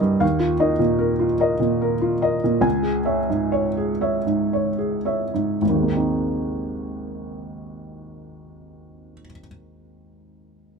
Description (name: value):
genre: neoclassical minimalist piano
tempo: 53-78 BPM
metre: 3/4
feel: rubato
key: Ab major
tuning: A4 = 440 Hz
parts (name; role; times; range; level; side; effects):
- felt-muted upright piano; solo; 0.0-10.8 s; Ab1 to Ab5; -20 LUFS; right 1 dB; none
room: little or no reverb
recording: close, detailed microphones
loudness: -19 LUFS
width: side -5 dB against mid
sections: 0.0-5.6 A section; 5.6-8.9 B section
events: slowing down 0.0-5.6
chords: 0.2 Ebsus2; 2.6 Dbm; 5.6 Abadd9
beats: | 0.22 1.00 1.81 | 2.64 3.53 4.52 | 5.61 6.71 7.82